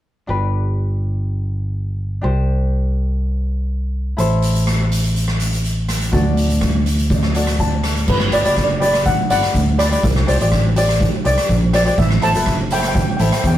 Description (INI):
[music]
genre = calypso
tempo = 123 BPM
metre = 4/4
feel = straight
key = G major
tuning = A4 = 440 Hz
[part]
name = tenor ukulele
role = accompaniment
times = 0.3-13.5 s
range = D4 to A5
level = -21 LUFS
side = left 2 dB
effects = none
[part]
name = fingered electric bass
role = bass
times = 0.3-13.6 s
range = F#1 to E2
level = -18 LUFS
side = equal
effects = none
[part]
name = street-band drum kit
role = drums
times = 4.2-13.6 s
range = crash cymbal, hi-hat, kick drum, rim click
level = -20 LUFS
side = right 1 dB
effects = none
[part]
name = steel pan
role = melody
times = 8.1-13.6 s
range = B4 to A5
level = -20 LUFS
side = equal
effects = none
[sound]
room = moderate small room reverb, RT60 0.5 s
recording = rough rehearsal-room recording, warm saturation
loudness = -15 LUFS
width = side -12 dB against mid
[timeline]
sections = 0.3-8.1 A section; 8.1-13.6 B section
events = ukulele fill 7.4-8.1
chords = 0.3 G; 2.2 Csus2; 4.2 Am; 6.1 D; 8.1 Gmaj7; 10.0 Csus2; 12.0 Amadd9